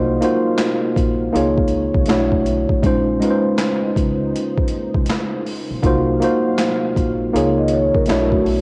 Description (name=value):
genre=lo-fi hip hop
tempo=80 BPM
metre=4/4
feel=swing 63% on 16ths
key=Bb minor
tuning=A4 = 438 Hz
part: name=mellow tine electric piano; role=accompaniment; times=0.0-8.6 s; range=Ab3 to Eb5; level=-20 LUFS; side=equal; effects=low-pass filter, cassette tape
part: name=warm analog pad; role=sustained chords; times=0.0-8.6 s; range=C3 to F5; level=-33 LUFS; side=equal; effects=chorus, low-pass filter, cassette tape
part: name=upright bass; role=bass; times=0.0-8.6 s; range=A1 to Db2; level=-27 LUFS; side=equal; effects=none
part: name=boom bap sampler-style drum kit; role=drums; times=0.2-8.6 s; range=handclaps, hi-hat, kick drum, snare drum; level=-24 LUFS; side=equal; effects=overdrive, vintage 12-bit sampler grit
part: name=vibraphone with soft mallets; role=second line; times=7.6-8.6 s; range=F#4 to Eb5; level=-23 LUFS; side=equal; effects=low-pass filter, cassette tape, analog delay
room=moderate spring reverb, RT60 2.7 s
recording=home recording on cassette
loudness=-18 LUFS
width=mono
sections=0.0-8.6 A section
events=none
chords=0.0 Ab13/C; 1.3 Db69; 2.1 Bm11; 2.8 Bbm11; 5.8 Ab13/C; 7.3 Db69; 8.1 Bm11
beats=0.58 1.33 2.08 | 2.83 3.58 4.33 5.08 | 5.83 6.58 7.33 8.09